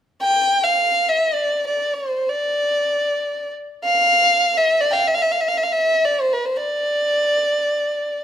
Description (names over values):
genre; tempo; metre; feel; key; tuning
turkish; free time; none; none; D makam huseyni; A4 = 439 Hz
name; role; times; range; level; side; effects
dark violin; melody; 0.2-8.2 s; B4-34c to G5; -17 LUFS; equal; none
room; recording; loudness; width
moderate recital hall reverb, RT60 1.4 s; close, detailed microphones; -17 LUFS; side -10 dB against mid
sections
0.0-8.2 A section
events
none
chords
none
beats
free time